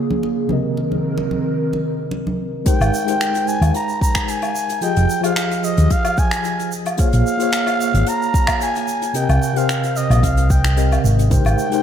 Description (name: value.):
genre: sunset chillout.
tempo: 111 BPM.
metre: 4/4.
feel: straight.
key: Ab major.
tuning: A4 = 442 Hz.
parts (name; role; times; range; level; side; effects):
mellow tine electric piano; accompaniment; 0.0-11.8 s; C3 to Eb5; -22 LUFS; left 2 dB; medium stereo tremolo, auto-pan, ping-pong delay.
airy breathy pad; sustained chords; 0.0-2.6, 11.3-11.8 s; C3 to Bb4; -22 LUFS; right 1 dB; chorus.
congas; percussion; 0.1-2.4, 11.3-11.6 s; none; -25 LUFS; right 2 dB; none.
trumpet with cup mute; melody; 2.7-11.8 s; Eb5 to Bb5; -22 LUFS; right 1 dB; diffuse ambient delay.
electronic kick drum; drums; 2.7-11.4 s; none; -18 LUFS; equal; none.
soft brush drum kit; drums; 2.7-11.8 s; finger snaps, hi-hat, shaker, woodblock; -25 LUFS; equal; none.
hollow-body short-scale fingered electric bass; bass; 2.8-11.5 s; F1 to Eb2; -15 LUFS; equal; none.
room: moderate plate reverb, RT60 2.1 s.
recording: dreamy mix soaked in reverb.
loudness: -16 LUFS.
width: side -9 dB against mid.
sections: 0.0-2.7 A section; 2.7-11.8 B section.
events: none.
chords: 0.0 Bbm7; 0.5 Cm7; 2.7 Abmaj7; 4.8 Fm7; 7.0 Bbm7; 9.2 Abmaj7.